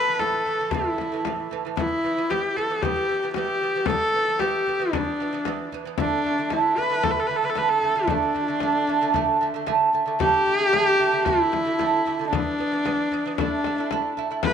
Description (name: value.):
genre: mongolian traditional, Mongolian folk.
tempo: 114 BPM.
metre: 4/4.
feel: straight.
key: D zhi mode.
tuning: A4 = 440 Hz.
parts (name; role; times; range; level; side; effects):
clear horsehead fiddle; melody; 0.0-14.5 s; D4 to B4; -23 LUFS; left 1 dB; tape echo.
lute; arpeggios; 0.0-14.5 s; A2 to E4; -25 LUFS; right 6 dB; none.
frame drum; percussion; 0.2-14.5 s; none; -29 LUFS; left 9 dB; none.
room: moderate echo chamber reverb, RT60 1.6 s.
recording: 1960s-style stereo with parts hard left and right.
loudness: -21 LUFS.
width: side -8 dB against mid.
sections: 0.0-10.2 A section; 10.2-14.5 B section.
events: none.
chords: 0.0 A5; 1.8 E5; 6.0 D5; 12.3 E5; 13.4 A5.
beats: 0.20 0.72 1.25 | 1.77 2.30 2.82 3.35 | 3.88 4.40 4.93 5.46 | 5.98 6.51 7.04 7.56 | 8.09 8.62 9.14 9.67 | 10.20 10.73 11.26 11.79 | 12.31 12.84 13.37 13.90 | 14.43.